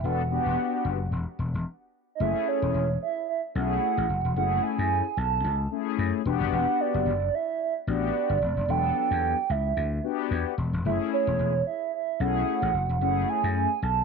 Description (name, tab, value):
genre	early-eighties boogie funk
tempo	111 BPM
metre	4/4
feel	swing 56% on 16ths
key	F# minor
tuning	A4 = 441 Hz
part	hollow clarinet-like synth lead	melody	0.0-14.0 s	C#5 to A5	-27 LUFS	right 11 dB	chorus, slapback echo
part	mellow synth brass	accompaniment	0.0-13.7 s	F#3 to A4	-30 LUFS	left 16 dB	chorus
part	vintage slap bass	bass	0.0-14.0 s	E1 to F#2	-28 LUFS	left 2 dB	none
room	light reverb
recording	1960s-style stereo with parts hard left and right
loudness	-24 LUFS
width	side -5 dB against mid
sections	0.0-2.2 A section; 2.2-14.0 B section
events	stop 1.7-2.2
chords	0.0 Em9; 2.2 F#m9; 6.3 Em9; 10.8 F#m9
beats	| 0.04 0.58 1.12 1.66 | 2.20 2.74 3.28 3.82 | 4.36 4.90 5.44 5.98 | 6.53 7.07 7.61 8.15 | 8.69 9.23 9.77 10.31 | 10.85 11.39 11.93 12.47 | 13.01 13.55